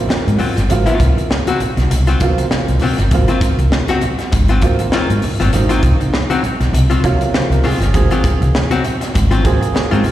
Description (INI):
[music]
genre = funk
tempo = 100 BPM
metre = 4/4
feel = swing 56% on 16ths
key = Ab mixolydian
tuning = A4 = 438 Hz
[part]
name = dark upright piano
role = stabs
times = 0.0-10.0 s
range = C3 to Db5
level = -21 LUFS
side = right 4 dB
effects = slapback echo
[part]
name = archtop guitar, miked and amplified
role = accompaniment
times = 0.1-10.1 s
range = Gb3 to Gb4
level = -20 LUFS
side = left 4 dB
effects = slapback echo
[part]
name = crisp fusion drum kit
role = drums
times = 0.1-10.1 s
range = hi-hat, kick drum, snare drum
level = -18 LUFS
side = equal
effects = none
[part]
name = congas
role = percussion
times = 0.1-10.1 s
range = none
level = -24 LUFS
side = right 1 dB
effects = none
[part]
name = woody fretless electric bass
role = bass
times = 0.3-10.0 s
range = G1 to Ab2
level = -14 LUFS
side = equal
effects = lush chorus
[sound]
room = small room ambience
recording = live gig heard through the venue's PA, recital hall reverb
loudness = -12 LUFS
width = side -13 dB against mid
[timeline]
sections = 0.0-10.1 A section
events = upright piano fill 6.7-7.9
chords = 0.0 Ab13